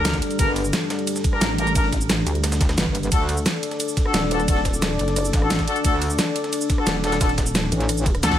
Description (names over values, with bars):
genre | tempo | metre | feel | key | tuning
dark technical drum and bass | 176 BPM | 4/4 | straight | unclear | A4 = 439 Hz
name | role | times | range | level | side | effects
dark analog pad | sustained chords | 0.0-8.4 s | G3 to D5 | -26 LUFS | left 2 dB | chorus, sidechain pumping
warm brass ensemble | stabs | 0.0-8.4 s | D4 to Bb4 | -26 LUFS | left 2 dB | dub echo
pulsing pluck wobble bass | bass | 0.0-8.4 s | Eb1 to D2 | -24 LUFS | equal | chorus
breakbeat sampler-style drum kit | drums | 0.0-8.4 s | hi-hat, snare drum | -34 LUFS | equal | high-pass filter on hats, high-pass filter on snare
dubstep drum kit | drums | 0.1-8.4 s | cabasa, hi-hat, ride cymbal, rim click, snare drum | -25 LUFS | right 1 dB | none
electronic kick drum | drums | 0.1-8.4 s | none | -22 LUFS | equal | none
metallic wobble bass | bass | 0.4-0.7, 2.8-3.4, 5.8-8.2 s | G1 to D2 | -24 LUFS | equal | chorus, tube saturation, sidechain pumping
room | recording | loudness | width
little or no reverb | none | -19 LUFS | side -11 dB against mid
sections
0.0-8.4 A section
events
drum fill 8.2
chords
0.0 Gm; 3.1 D